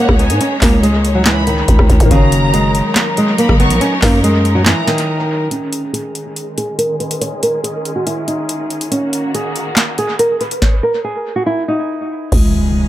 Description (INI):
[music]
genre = hip hop, trap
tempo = 141 BPM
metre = 4/4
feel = half-time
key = unclear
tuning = A4 = 440 Hz
[part]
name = nylon-string guitar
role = melody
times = 0.0-12.3 s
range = C#3 to C#5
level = -17 LUFS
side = right 1 dB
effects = low-pass filter, dub echo
[part]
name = warm studio violin section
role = second line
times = 0.0-5.1 s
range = F#5 to C#6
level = -23 LUFS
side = equal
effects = dub echo
[part]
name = dark grand piano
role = accompaniment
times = 0.0-5.5 s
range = D#3 to C#5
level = -24 LUFS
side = left 2 dB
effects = low-pass filter, dub echo
[part]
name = clear symphonic string section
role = sustained chords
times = 0.0-12.9 s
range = D#3 to C#5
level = -22 LUFS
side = left 1 dB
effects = low-pass filter
[part]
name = growling 808-style bass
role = bass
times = 0.1-4.7, 12.3-12.9 s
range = F#1 to G#2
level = -15 LUFS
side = equal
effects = none
[part]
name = booming analog drum machine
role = drums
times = 0.1-12.5 s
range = crash cymbal, handclaps, hi-hat, kick drum, rim click, snare drum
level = -15 LUFS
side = equal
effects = dub echo
[part]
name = impact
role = sound effects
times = 12.3-12.9 s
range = none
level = -20 LUFS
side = equal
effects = none
[sound]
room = light reverb, small room reverb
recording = echo-heavy mix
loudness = -12 LUFS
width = side -13 dB against mid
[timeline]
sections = 0.0-5.5 A section; 5.5-12.3 B section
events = break 5.1-5.5; filter sweep 5.5-12.3; hi-hats muted 12.3-12.9; impact 12.3-12.9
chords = 0.0 C#sus2; 2.1 F#6; 5.5 C#sus2; 8.9 F#6; 12.3 C#sus2